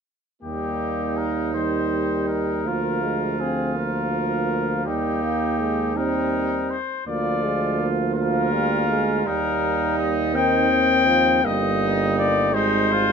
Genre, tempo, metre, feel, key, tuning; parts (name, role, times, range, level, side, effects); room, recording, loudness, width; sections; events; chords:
classical, brass quintet; 54 BPM (dotted quarters); 6/8; straight; Eb major; A4 = 443 Hz
clear trumpet; melody; 0.4-13.1 s; G4 to G5; -24 LUFS; left 7 dB
bright trumpet; second line; 0.4-13.1 s; Eb4 to F4; -28 LUFS; right 6 dB
clear trombone; accompaniment; 0.4-13.1 s; Eb3 to Bb3; -28 LUFS; right 6 dB
warm French horn; accompaniment; 0.4-13.1 s; G3 to C4; -27 LUFS; left 3 dB
warm tuba; bass; 0.4-13.1 s; G1 to Eb2; -26 LUFS; right 4 dB
moderate large studio reverb, RT60 1.1 s; minimal, uncompressed stereo recording; -20 LUFS; side -6 dB against mid
0.4-13.1 A section
0.4 Eb; 2.6 Bb7/D; 4.9 Eb; 7.1 Bb7/D; 9.3 Eb; 11.4 Eb/G; 12.5 Fm7/Ab